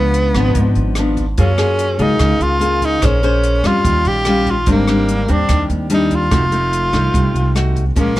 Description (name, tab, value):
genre	bossa nova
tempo	146 BPM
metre	4/4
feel	straight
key	unclear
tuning	A4 = 444 Hz
part	breathy tenor saxophone	melody	0.0-8.2 s	Bb3 to G4	-18 LUFS	equal	none
part	nylon-string guitar	accompaniment	0.0-8.2 s	Ab2 to C5	-18 LUFS	left 2 dB	none
part	upright bass	bass	0.0-8.2 s	F1 to Gb2	-17 LUFS	equal	none
part	compact cocktail drum kit	drums	0.1-8.2 s	hi-hat, kick drum, rim click	-21 LUFS	right 1 dB	none
room	little or no reverb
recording	none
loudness	-13 LUFS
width	side -16 dB against mid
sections	0.0-8.2 A section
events	none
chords	0.0 Db7b9; 1.4 Gbmaj9; 3.0 Bbm9; 3.8 Eb9; 4.7 Abmaj9#11; 6.3 F7b9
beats	0.14 0.56 0.97 | 1.38 1.79 2.20 2.61 | 3.03 3.44 3.85 4.26 | 4.67 5.08 5.50 5.91 | 6.32 6.73 7.14 7.55 | 7.97